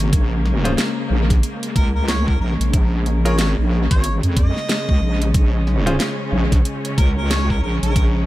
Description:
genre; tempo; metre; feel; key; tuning
glitch hop; 92 BPM; 4/4; swing 60% on 16ths; Bb minor; A4 = 438 Hz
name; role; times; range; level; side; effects
warm studio string section; sustained chords; 0.0-8.3 s; Db3 to Db4; -26 LUFS; left 1 dB; sidechain pumping
wobble bass; bass; 0.0-8.3 s; Ab1 to F2; -18 LUFS; equal; chorus, overdrive
dubstep drum kit; drums; 0.0-8.1 s; hi-hat, snare drum; -26 LUFS; equal; dub echo
electronic kick drum; drums; 0.1-8.1 s; none; -17 LUFS; equal; none
clear concert grand piano; stabs; 0.6-5.9 s; Db4 to C5; -28 LUFS; equal; sidechain pumping, dub echo
clear harmonica; melody; 1.8-8.1 s; Bb4 to Eb5; -29 LUFS; equal; vintage 12-bit sampler grit, dub echo
room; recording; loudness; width
studio reverb; echo-heavy mix; -16 LUFS; side -16 dB against mid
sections
0.0-8.3 A section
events
none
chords
0.0 Bbm7

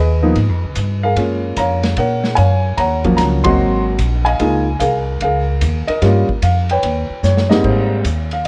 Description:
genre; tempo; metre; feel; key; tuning
jazz piano trio; 148 BPM; 4/4; swing 67% on 8ths; unclear; A4 = 444 Hz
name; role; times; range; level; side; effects
warm baby grand piano; melody; 0.0-8.5 s; Ab2 to C6; -19 LUFS; equal; none
upright bass; bass; 0.0-8.5 s; Ab1 to Bb2; -19 LUFS; equal; none
vintage drum kit; drums; 0.4-8.5 s; crash cymbal, hi-hat, kick drum, ride cymbal, snare drum; -27 LUFS; equal; none
room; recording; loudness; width
light reverb; worn, warbling old tape, cassette tape, warbly pitch drift; -16 LUFS; mono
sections
0.0-7.6 A section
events
band accent 3.4; drum fill 7.2-7.6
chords
0.0 Db9; 1.2 Gbmaj9; 2.8 Ebm7; 3.6 Ab9; 4.4 Db69; 6.0 Gm7b5; 6.8 Eb7alt; 7.6 Abmaj9

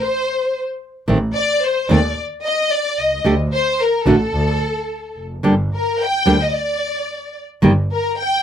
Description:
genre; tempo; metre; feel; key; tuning
tango; 111 BPM; 4/4; rubato; G minor; A4 = 440 Hz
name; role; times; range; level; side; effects
warm symphonic violin section; second line; 0.0-8.4 s; A4 to G5; -19 LUFS; left 2 dB; none
nylon-string guitar; accompaniment; 1.1-7.7 s; D3 to G4; -14 LUFS; right 1 dB; none
clear double bass; bass; 1.1-7.9 s; F1 to Eb2; -20 LUFS; right 1 dB; none
room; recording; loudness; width
little or no reverb; close, detailed microphones; -16 LUFS; side -9 dB against mid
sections
0.0-8.4 A section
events
violin section solo 0.0-8.4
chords
0.0 N.C.; 1.1 Adim; 3.2 D5; 5.4 G5; 7.6 Eb/G

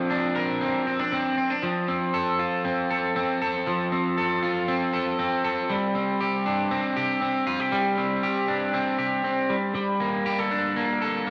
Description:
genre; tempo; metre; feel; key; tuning
indie pop; 118 BPM; 4/4; straight; F major; A4 = 444 Hz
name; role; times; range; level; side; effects
electric guitar at the edge of break-up; solo; 0.0-11.3 s; F3 to Bb4; -25 LUFS; equal; lush chorus, tape echo
room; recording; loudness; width
wet lush hall reverb, RT60 2.7 s; dreamy mix soaked in reverb; -25 LUFS; mono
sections
0.0-1.6 A section; 1.6-11.3 B section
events
none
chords
0.0 Bbadd9; 1.6 F; 5.7 Csus2; 9.5 Gmadd9

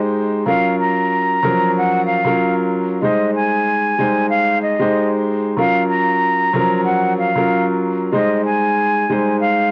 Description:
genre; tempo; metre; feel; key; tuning
hip hop; 94 BPM; 4/4; swing 60% on 16ths; unclear; A4 = 441 Hz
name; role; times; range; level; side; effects
dark grand piano; accompaniment; 0.0-9.7 s; F3 to C5; -20 LUFS; equal; cassette tape, high-pass filter, low-pass filter
breathy concert flute; melody; 0.5-9.7 s; Eb5 to Bb5; -20 LUFS; equal; high-pass filter, low-pass filter
room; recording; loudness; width
light reverb, studio ambience; dry, gritty hardware recording, cassette tape; -17 LUFS; mono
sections
0.0-9.7 A section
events
none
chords
0.5 Gbmaj7; 3.0 Abmaj7; 5.6 Gbmaj7; 8.1 Abmaj7

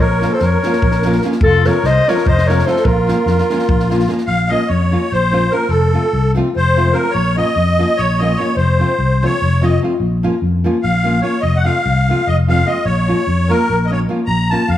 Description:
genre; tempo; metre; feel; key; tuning
balkan folk, Balkan wedding band; 294 BPM (eighths); 7/8; straight; Bb harmonic minor; A4 = 441 Hz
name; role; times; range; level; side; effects
mellow clarinet; melody; 0.0-4.1 s; A4 to Eb5; -17 LUFS; equal; none
musette accordion; second line; 0.0-14.8 s; F4 to Bb5; -18 LUFS; equal; none
fingered electric bass; bass; 0.0-14.8 s; F1 to F2; -16 LUFS; left 1 dB; none
nylon-string guitar; accompaniment; 0.2-14.6 s; F3 to F4; -20 LUFS; equal; none
compact cocktail drum kit; percussion; 0.2-4.2 s; kick drum, snare drum; -20 LUFS; equal; none
room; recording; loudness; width
moderate recital hall reverb, RT60 1.5 s; none; -12 LUFS; side -12 dB against mid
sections
0.0-4.3 A section; 4.3-14.8 B section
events
accordion solo 4.3-14.8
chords
0.0 Bbm; 1.4 F; 2.8 Bbm; 5.7 F; 7.1 Bbm; 8.6 F; 10.0 Bbm; 11.4 F; 12.8 Bbm

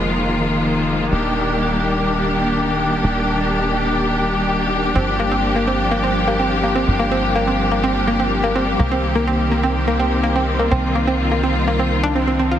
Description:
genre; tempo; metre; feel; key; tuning
house; 125 BPM; 4/4; straight; C minor; A4 = 441 Hz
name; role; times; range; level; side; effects
rich symphonic string section; sustained chords; 0.0-12.6 s; Eb3 to G4; -18 LUFS; left 1 dB; none
tight sequencer bass; bass; 0.0-12.6 s; Eb1 to C2; -23 LUFS; equal; none
analog pluck; arpeggios; 5.0-12.6 s; Bb3 to F4; -20 LUFS; right 1 dB; chorus, tape echo
room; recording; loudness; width
moderate huge ambient reverb, RT60 3.8 s; heavily compressed radio sound; -16 LUFS; side -10 dB against mid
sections
0.0-12.6 A section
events
none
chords
0.0 Fm7; 1.1 Ebmaj7; 5.0 Gm7; 8.8 Cm7

